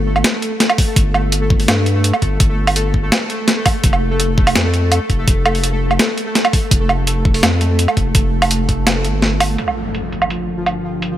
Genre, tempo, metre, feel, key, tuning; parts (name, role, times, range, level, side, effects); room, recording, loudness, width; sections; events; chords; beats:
half-time drum and bass; 167 BPM; 4/4; half-time; G minor; A4 = 440 Hz
saturated sub bass; bass; 0.0-9.6 s; F1 to G2; -17 LUFS; equal
pulsing gated texture; texture; 0.0-11.2 s; F3 to A4; -22 LUFS; equal; chorus, built-in reverb
boom bap sampler-style drum kit; drums; 0.2-11.1 s; hi-hat, snare drum, woodblock; -16 LUFS; right 1 dB; overdrive, low-pass filter on hats, low-pass filter on snare, low-pass filter on perc, low-pass filter on room
electronic kick drum; drums; 0.8-8.8 s; -15 LUFS; equal; overdrive
deep dark ambient pad; sustained chords; 10.3-11.2 s; G3 to G5; -30 LUFS; left 2 dB; chorus, built-in reverb, sidechain pumping
impact; sound effects; 9.6-11.0 s; -27 LUFS; equal
light reverb; -13 LUFS; side -12 dB against mid
0.0-9.6 A section; 9.6-11.2 B section
kick drops out 9.2-9.6; impact 9.6-11.0; filter sweep on drum 9.6-11.2; filter sweep on ambient pad 9.6-11.2
0.0 Gsus2; 3.8 N.C.; 9.6 Gm
0.25 0.60 | 0.96 1.32 1.68 2.04 | 2.40 2.76 3.12 3.48 | 3.84 4.20 4.56 4.92 | 5.28 5.63 5.99 6.35 | 6.71 7.07 7.43 7.79 | 8.15 8.51 8.87 9.23 | 9.59 9.95 10.31 10.66 | 11.02